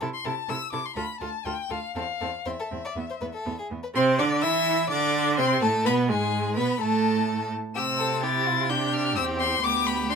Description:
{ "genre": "quick classical-period movement for string quartet", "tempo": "126 BPM", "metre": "4/4", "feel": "rubato", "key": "A minor", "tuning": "A4 = 440 Hz", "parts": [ { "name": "rich violin", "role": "second line", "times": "0.0-10.2 s", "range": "F4 to E5", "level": "-30 LUFS", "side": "left 3 dB", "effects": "none" }, { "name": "rich viola", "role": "accompaniment", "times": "0.0-10.2 s", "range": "G#3 to F4", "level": "-27 LUFS", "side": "right 3 dB", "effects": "none" }, { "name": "rich cello", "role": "bass", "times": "0.0-10.2 s", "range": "D2 to E3", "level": "-30 LUFS", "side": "right 4 dB", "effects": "none" }, { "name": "rich violin", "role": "melody", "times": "0.1-10.2 s", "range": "E5 to A6", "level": "-28 LUFS", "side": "left 7 dB", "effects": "none" } ], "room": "light reverb", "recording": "minimal, uncompressed stereo recording", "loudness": "-23 LUFS", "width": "side -6 dB against mid", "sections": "0.0-4.0 A section; 4.0-10.2 B section", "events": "none", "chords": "0.0 Am/C; 1.0 Dmadd11; 2.0 Am/E (rootless); 3.0 E5; 4.0 Am/C; 5.9 G#m; 6.8 N.C.; 7.8 C; 9.6 G/D" }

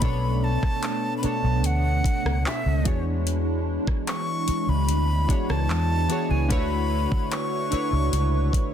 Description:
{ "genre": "contemporary R&B", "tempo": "74 BPM", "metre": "4/4", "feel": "straight", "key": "unclear", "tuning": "A4 = 440 Hz", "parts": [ { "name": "breathy bright jazz flute", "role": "melody", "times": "0.0-8.7 s", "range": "E5 to C#6", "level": "-30 LUFS", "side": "left 1 dB", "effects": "ping-pong delay" }, { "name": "warm analog keys", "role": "accompaniment", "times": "0.0-8.7 s", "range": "B2 to C#5", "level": "-29 LUFS", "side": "left 2 dB", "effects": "chorus" }, { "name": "hollow soft pad", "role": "sustained chords", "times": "0.0-8.7 s", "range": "G#3 to C#5", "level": "-31 LUFS", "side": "right 2 dB", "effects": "ensemble chorus" }, { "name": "vintage muted fingered electric bass", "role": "bass", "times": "0.0-8.5 s", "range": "B1 to E2", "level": "-24 LUFS", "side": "equal", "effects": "none" }, { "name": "smooth R&B drum kit", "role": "drums", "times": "0.0-8.7 s", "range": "handclaps, hi-hat, kick drum, rim click", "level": "-26 LUFS", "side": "equal", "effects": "none" } ], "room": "little or no reverb", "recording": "dense, heavily limited modern master", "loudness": "-22 LUFS", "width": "side -9 dB against mid", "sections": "0.0-8.7 A section", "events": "none", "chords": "0.0 Bm9; 2.9 E13; 6.5 Dmaj13" }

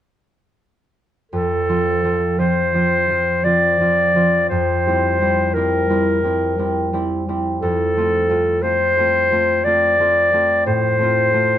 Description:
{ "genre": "classical, romantic duo for clarinet and harp", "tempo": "58 BPM", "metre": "3/4", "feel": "rubato", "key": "F major", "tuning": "A4 = 441 Hz", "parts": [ { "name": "bright clarinet", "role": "melody", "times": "1.3-11.6 s", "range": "A4 to D5", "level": "-16 LUFS", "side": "left 1 dB", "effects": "none" }, { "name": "concert harp", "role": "accompaniment", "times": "1.3-11.6 s", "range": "F2 to F4", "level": "-20 LUFS", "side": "right 1 dB", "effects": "none" } ], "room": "light reverb", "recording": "minimal, uncompressed stereo recording", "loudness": "-15 LUFS", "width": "side -11 dB against mid", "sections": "1.3-11.6 A section", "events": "none", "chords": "1.3 F; 4.5 C7/F; 7.6 F; 10.7 F/A" }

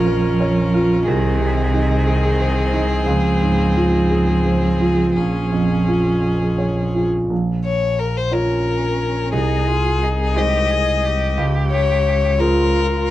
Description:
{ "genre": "neoclassical piano and strings", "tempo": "59 BPM (dotted quarters)", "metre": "6/8", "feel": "rubato", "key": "Bb dorian", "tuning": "A4 = 440 Hz", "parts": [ { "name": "rich violin", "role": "melody", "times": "0.0-13.1 s", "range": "Ab4 to Eb5", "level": "-22 LUFS", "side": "left 4 dB", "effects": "none" }, { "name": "rich cello", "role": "second line", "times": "0.0-13.1 s", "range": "Eb3 to Ab4", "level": "-22 LUFS", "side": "right 3 dB", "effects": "none" }, { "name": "clear upright piano", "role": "accompaniment", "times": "0.0-13.1 s", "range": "Bb1 to Db5", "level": "-21 LUFS", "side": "right 2 dB", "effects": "none" }, { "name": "clear viola", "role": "accompaniment", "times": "0.0-7.1 s", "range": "C4 to Db4", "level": "-27 LUFS", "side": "right 1 dB", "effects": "none" }, { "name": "rich double bass", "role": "bass", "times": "0.0-13.1 s", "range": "Bb1 to Db2", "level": "-21 LUFS", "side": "equal", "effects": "none" } ], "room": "light reverb", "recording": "worn, warbling old tape, cassette tape, warbly pitch drift", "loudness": "-15 LUFS", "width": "side -14 dB against mid", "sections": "0.0-7.3 A section; 7.3-13.1 B section", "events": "none", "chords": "0.0 Bbm; 1.1 Ab/C; 3.1 Dbmaj7; 5.2 Bbm7; 7.3 Bbm; 9.3 Ab/C; 11.4 Dbmaj7" }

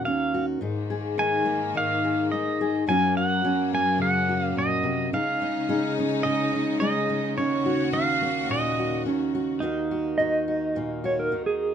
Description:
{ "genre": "acoustic folk duo or small band", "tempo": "107 BPM", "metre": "4/4", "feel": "straight", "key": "Eb minor", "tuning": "A4 = 440 Hz", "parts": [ { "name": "pedal steel guitar", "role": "second line", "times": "0.0-11.7 s", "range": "Eb4 to Ab5", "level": "-26 LUFS", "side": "right 2 dB", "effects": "none" }, { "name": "fingerpicked steel-string acoustic guitar", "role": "accompaniment", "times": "0.0-11.7 s", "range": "Eb2 to Ab4", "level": "-26 LUFS", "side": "left 1 dB", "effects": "none" }, { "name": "clear studio string section", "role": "sustained chords", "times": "0.6-9.6 s", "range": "Eb2 to Gb4", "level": "-33 LUFS", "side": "left 2 dB", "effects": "none" }, { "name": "mellow electric guitar", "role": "melody", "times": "10.2-11.7 s", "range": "Ab4 to Eb5", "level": "-25 LUFS", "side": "right 2 dB", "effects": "tremolo" } ], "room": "light reverb", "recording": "minimal, uncompressed stereo recording", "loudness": "-22 LUFS", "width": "side -8 dB against mid", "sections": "0.0-9.6 A section; 9.6-11.7 B section", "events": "pedal steel guitar solo 0.0-9.6; clean electric guitar solo 9.6-11.7", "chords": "0.0 Ebm7; 0.6 Absus2; 2.9 Gb; 5.1 Dbsus2; 7.4 Ebm7; 9.6 Ebm" }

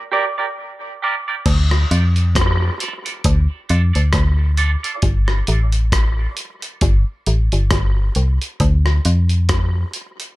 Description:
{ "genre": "dub reggae", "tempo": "67 BPM", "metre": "4/4", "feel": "swing 58% on 16ths", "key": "D minor", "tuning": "A4 = 439 Hz", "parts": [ { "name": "clean electric guitar", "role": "accompaniment", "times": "0.1-4.9 s", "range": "F4 to D5", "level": "-24 LUFS", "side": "right 4 dB", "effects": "high-pass filter, dub echo" }, { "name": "metallic FM bass", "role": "bass", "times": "1.5-9.8 s", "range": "G1 to F2", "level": "-15 LUFS", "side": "equal", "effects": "none" }, { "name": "dusty soul sampler-style drum kit", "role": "drums", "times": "1.5-10.4 s", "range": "crash cymbal, hi-hat, kick drum, rim click", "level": "-20 LUFS", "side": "equal", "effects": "none" } ], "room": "light reverb", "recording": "none", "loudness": "-15 LUFS", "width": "side -18 dB against mid", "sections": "0.0-1.5 A section; 1.5-10.4 B section", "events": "break 0.0-1.5; filter sweep on clean electric guitar 0.0-5.0", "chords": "0.0 Gm; 1.5 Dm; 5.0 Gsus2; 8.6 Dm" }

